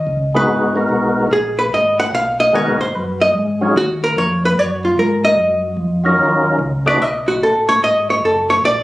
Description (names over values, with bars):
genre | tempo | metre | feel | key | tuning
soul jazz organ trio | 147 BPM | 4/4 | swing 66% on 8ths | Eb minor | A4 = 440 Hz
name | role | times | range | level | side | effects
archtop guitar, miked and amplified | accompaniment | 0.0-8.8 s | F4 to Gb5 | -15 LUFS | equal | none
tonewheel organ | bass | 0.0-8.8 s | F#1 to Ab2 | -22 LUFS | equal | chorus vibrato
percussive tonewheel organ | melody | 0.3-7.0 s | Gb3 to Cb5 | -16 LUFS | equal | slow rotary speaker, overdrive, chorus vibrato
room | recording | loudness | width
moderate large studio reverb, RT60 1.2 s | recorded on a phone in the room, club reverb, compression | -13 LUFS | side -17 dB against mid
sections
0.0-8.8 A section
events
hollow-body jazz guitar solo 0.0-8.8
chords
0.5 Abm7; 3.7 Ebm7; 7.0 B5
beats
0.08 | 0.48 0.89 1.30 1.71 | 2.11 2.52 2.93 3.34 | 3.74 4.15 4.56 4.96 | 5.37 5.78 6.18 6.59 | 7.00 7.41 7.81 8.22 | 8.63